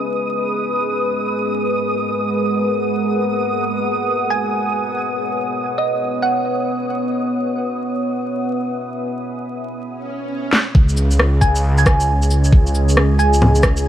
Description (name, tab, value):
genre	future garage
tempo	free time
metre	none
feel	none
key	C# dorian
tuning	A4 = 440 Hz
part	deep dark ambient pad	sustained chords	0.0-13.9 s	G#3 to G#5	-21 LUFS	left 1 dB	chorus, built-in reverb, sidechain pumping
part	flickering grainy texture	texture	0.0-9.9 s	D#6	-26 LUFS	right 3 dB	built-in reverb
part	thumb-piano-like synth pluck	melody	4.3-6.7, 11.4-13.6 s	D#5 to G#5	-22 LUFS	right 3 dB	analog chorus, tape echo
part	swell	sound effects	10.0-10.7 s	none	-30 LUFS	right 2 dB	none
part	electronic snare drum, shaker, cabasa, rim click and bongos	drums	10.5-13.8 s	none	-19 LUFS	equal	none
part	electronic kick drum	drums	10.7-13.7 s	none	-13 LUFS	equal	none
part	swelling detuned saw bass	bass	10.8-13.9 s	C#2	-15 LUFS	equal	sidechain pumping
room	moderate huge ambient reverb, RT60 7.4 s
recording	vinyl crackle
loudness	-16 LUFS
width	side -10 dB against mid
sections	0.0-10.8 A section; 10.8-13.9 B section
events	swell 10.0-10.8; drum fill 10.5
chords	0.1 G#m7; 3.6 Badd9; 7.2 E/B; 10.8 C#5